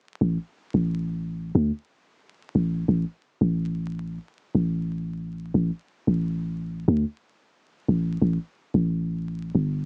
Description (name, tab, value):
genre	trip hop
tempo	90 BPM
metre	4/4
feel	swing 58% on 16ths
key	unclear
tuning	A4 = 445 Hz
part	soft 808-style bass	bass	0.2-9.8 s	G1 to D2	-26 LUFS	equal	none
room	little or no reverb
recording	home recording on cassette, vinyl crackle, small speaker sound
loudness	-27 LUFS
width	mono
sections	0.2-9.9 A section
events	none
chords	none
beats	| 0.21 0.87 1.54 2.21 | 2.87 3.54 4.21 4.87 | 5.54 6.21 6.87 7.54 | 8.21 8.87 9.54